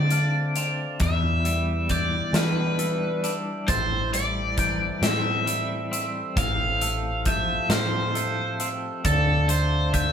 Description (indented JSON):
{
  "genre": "post-rock",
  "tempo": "45 BPM (dotted quarters)",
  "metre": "6/8",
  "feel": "straight",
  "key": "A minor",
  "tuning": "A4 = 440 Hz",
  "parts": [
    { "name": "cranked stack guitar", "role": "melody", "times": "0.0-10.1 s", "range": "A4 to F5", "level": "-27 LUFS", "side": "equal", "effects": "overdrive" },
    { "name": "pedal harmonium", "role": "sustained chords", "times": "0.0-10.1 s", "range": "D3 to D5", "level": "-36 LUFS", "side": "right 1 dB", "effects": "none" },
    { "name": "clean electric guitar", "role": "arpeggios", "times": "0.0-10.1 s", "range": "E2 to D4", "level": "-32 LUFS", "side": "left 2 dB", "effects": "tremolo" },
    { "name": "glockenspiel with rubber mallets", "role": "arpeggios", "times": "0.0-10.1 s", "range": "E6 to F7", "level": "-33 LUFS", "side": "right 6 dB", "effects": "none" },
    { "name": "hollow-body short-scale picked electric bass", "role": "bass", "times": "0.0-10.1 s", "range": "A1 to E3", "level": "-27 LUFS", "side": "equal", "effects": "none" },
    { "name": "big rock drum kit", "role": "drums", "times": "0.1-10.1 s", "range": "hi-hat, kick drum, snare drum", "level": "-28 LUFS", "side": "left 1 dB", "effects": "none" }
  ],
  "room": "moderate studio reverb, RT60 0.8 s",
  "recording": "band playing live in one room",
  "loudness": "-22 LUFS",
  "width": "side -8 dB against mid",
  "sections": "0.0-10.1 A section",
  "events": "none",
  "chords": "0.0 Dm7; 1.0 Em7; 3.7 Am7; 6.4 Fmaj7/A; 9.0 Dm7"
}